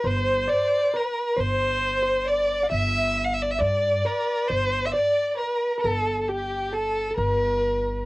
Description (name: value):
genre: Arabic maqam ensemble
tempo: 134 BPM (eighths)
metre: 10/8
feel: straight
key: G maqam rast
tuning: A4 = 439 Hz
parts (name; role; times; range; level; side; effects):
- rich violin; melody; 0.0-8.0 s; G4 to F#5-46c; -24 LUFS; equal; cassette tape
- dark studio violin section; second line; 0.0-8.0 s; G4 to E5; -29 LUFS; equal; cassette tape
- hollow-body jazz guitar; second line; 0.0-8.0 s; G4 to F#5-50c; -32 LUFS; right 1 dB; none
- upright bass; bass; 0.0-8.0 s; G1 to G2; -29 LUFS; equal; none
room: light reverb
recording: home recording on cassette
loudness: -21 LUFS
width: side -20 dB against mid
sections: 0.0-8.1 A section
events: none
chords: none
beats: | 0.03 0.48 0.92 1.37 1.81 2.26 2.71 3.15 3.60 4.04 | 4.49 4.94 5.38 5.83 6.28 6.72 7.17 7.61